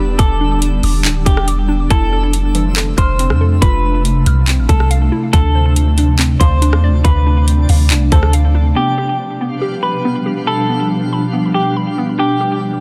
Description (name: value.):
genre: hip hop, atmospheric cloud-rap.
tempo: 140 BPM.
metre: 4/4.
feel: half-time.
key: unclear.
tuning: A4 = 440 Hz.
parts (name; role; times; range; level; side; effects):
semi-hollow electric guitar; melody; 0.0-12.6 s; G4 to C5; -23 LUFS; equal; low-pass filter, delay.
ethereal airy pad; sustained chords; 0.0-12.8 s; B2 to D4; -22 LUFS; equal; ensemble chorus, built-in reverb.
hollow square pluck; arpeggios; 0.0-12.8 s; E3 to F6; -25 LUFS; equal; chorus, low-pass filter, delay.
soft 808-style bass; bass; 0.0-8.7 s; D1 to F2; -16 LUFS; equal; none.
twinkling granular texture; texture; 0.0-12.8 s; F3 to E6; -32 LUFS; equal; built-in reverb.
trap drum kit; drums; 0.2-8.4 s; handclaps, hi-hat, kick drum, rim click; -17 LUFS; equal; none.
room: little or no reverb.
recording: dense, heavily limited modern master.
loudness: -14 LUFS.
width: mono.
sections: 0.0-8.8 A section; 8.8-12.8 B section.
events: none.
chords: 0.0 Em7; 1.9 Fmaj7; 5.3 Dm7; 8.8 G7; 12.2 Em7.